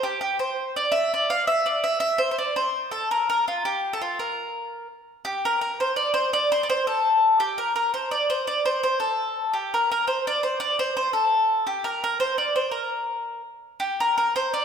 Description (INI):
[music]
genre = celtic folk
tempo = 112 BPM (dotted quarters)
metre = 6/8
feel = straight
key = unclear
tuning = A4 = 440 Hz
[part]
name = mandolin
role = solo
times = 0.0-14.6 s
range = F4 to F5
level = -22 LUFS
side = equal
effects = none
[sound]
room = wet recital hall reverb, RT60 1.6 s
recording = recorded in a church or concert hall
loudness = -21 LUFS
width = side -7 dB against mid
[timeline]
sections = 0.0-5.2 A section; 5.2-13.8 B section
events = none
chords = none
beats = 0.38 | 0.92 1.46 | 2.00 2.54 | 3.08 3.62 | 4.16 4.69 | 5.23 5.77 | 6.31 6.85 | 7.38 7.92 | 8.46 8.99 | 9.53 10.07 | 10.60 11.14 | 11.67 12.21 | 12.74 13.28 | 13.81 14.34